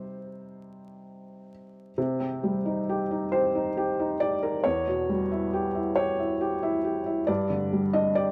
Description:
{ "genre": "neoclassical minimalist piano", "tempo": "45 BPM (dotted quarters)", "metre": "6/8", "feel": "rubato", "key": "unclear", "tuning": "A4 = 440 Hz", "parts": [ { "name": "felt-muted upright piano", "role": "solo", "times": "0.0-8.3 s", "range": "E2 to Eb5", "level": "-28 LUFS", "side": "equal", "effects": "none" } ], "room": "light reverb", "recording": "vinyl crackle", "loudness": "-27 LUFS", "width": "mono", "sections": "0.0-2.0 A section; 2.0-8.3 B section", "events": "none", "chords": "0.0 Cm; 4.6 Em; 7.3 G5" }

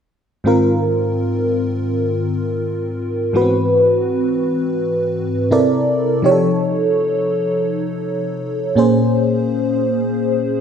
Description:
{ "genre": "R&B", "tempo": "free time", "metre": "none", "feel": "none", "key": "Ab major", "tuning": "A4 = 438 Hz", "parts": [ { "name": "FM electric piano with soft pad layer", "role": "accompaniment", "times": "0.4-10.6 s", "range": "Ab2 to D5", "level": "-15 LUFS", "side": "equal", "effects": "chorus, phaser" } ], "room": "wet lush hall reverb, RT60 1.8 s, digital ambience", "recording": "none", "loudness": "-15 LUFS", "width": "side -7 dB against mid", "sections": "0.5-10.6 A section", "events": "none", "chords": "0.5 Ab6; 3.3 Ab7alt; 5.5 C13; 6.2 F7b13; 8.8 Bbm7" }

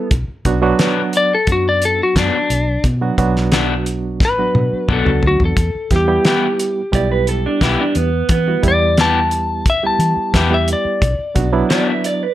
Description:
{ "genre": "straight-eighth soul blues", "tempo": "88 BPM", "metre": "4/4", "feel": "straight", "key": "B minor", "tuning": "A4 = 440 Hz", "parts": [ { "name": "electric guitar through a small old amp", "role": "second line", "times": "0.0-0.1, 7.0-12.3 s", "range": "B3 to E5", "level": "-19 LUFS", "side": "right 4 dB", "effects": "none" }, { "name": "barky reed electric piano", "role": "accompaniment", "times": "0.0-12.3 s", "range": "F#3 to A4", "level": "-20 LUFS", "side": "right 5 dB", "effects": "overdrive, fast tremolo" }, { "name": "vintage muted fingered electric bass", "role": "bass", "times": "0.1-11.6 s", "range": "A1 to E3", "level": "-19 LUFS", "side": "equal", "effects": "none" }, { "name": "cloth-damped thuddy drum kit", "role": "drums", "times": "0.1-12.2 s", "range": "hi-hat, kick drum, snare drum, toms", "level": "-18 LUFS", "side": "equal", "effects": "none" }, { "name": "electric guitar through a small old amp", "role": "stabs", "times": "0.8-11.9 s", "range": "B2 to G4", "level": "-19 LUFS", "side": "left 5 dB", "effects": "slapback echo" }, { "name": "clean lap steel guitar", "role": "melody", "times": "1.2-12.3 s", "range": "D4 to A5", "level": "-17 LUFS", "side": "left 2 dB", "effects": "none" } ], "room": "light reverb", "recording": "none", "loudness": "-14 LUFS", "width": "side -13 dB against mid", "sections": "0.0-12.3 A section", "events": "drum fill 4.2-5.6", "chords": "0.1 Bm; 5.6 Em; 11.0 Bm" }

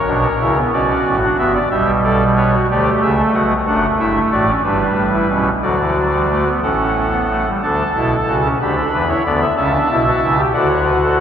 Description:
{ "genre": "classical, baroque-style 4-part fugue for pipe organ", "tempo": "61 BPM (dotted quarters)", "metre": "6/8", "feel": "straight", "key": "D major", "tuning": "A4 = 441 Hz", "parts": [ { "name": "pipe organ, soft reed", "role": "solo", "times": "0.0-11.2 s", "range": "F#1 to B5", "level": "-14 LUFS", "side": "equal", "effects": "none" } ], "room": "wet church reverb, RT60 4.1 s", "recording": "heard from further back in the room", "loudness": "-14 LUFS", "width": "side -8 dB against mid", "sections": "0.0-7.6 A section; 7.6-11.2 B section", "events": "none", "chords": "0.0 A#dim; 0.7 Bm; 1.7 G/B; 3.7 D/F#; 4.6 Em7/G; 5.6 D; 6.6 A; 7.6 D; 8.6 G/D; 9.6 A7; 10.6 D" }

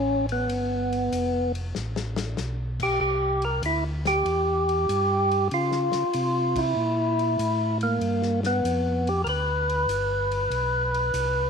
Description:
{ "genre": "soul jazz organ trio", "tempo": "96 BPM", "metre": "4/4", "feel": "swing 68% on 8ths", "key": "G mixolydian", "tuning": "A4 = 439 Hz", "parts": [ { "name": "percussive tonewheel organ", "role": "melody", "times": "0.0-11.5 s", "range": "Bb3 to B4", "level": "-24 LUFS", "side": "equal", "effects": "slow rotary speaker" }, { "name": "mellow tonewheel organ", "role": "bass", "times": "0.0-11.5 s", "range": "F1 to Db3", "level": "-28 LUFS", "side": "equal", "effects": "overdrive, chorus vibrato, slow rotary speaker" }, { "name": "warm soul drum kit", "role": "drums", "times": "0.3-11.3 s", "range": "crash cymbal, hi-hat, kick drum, ride cymbal, snare drum", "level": "-37 LUFS", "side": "left 6 dB", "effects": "none" } ], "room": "moderate spring reverb, RT60 2.2 s", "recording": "1960s-style stereo", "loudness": "-22 LUFS", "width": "side -6 dB against mid", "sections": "0.0-11.5 A section", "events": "drum fill 1.8-2.4; band accent 6.4-6.8", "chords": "0.0 G7; 3.0 C; 5.5 C13b9; 8.0 G7" }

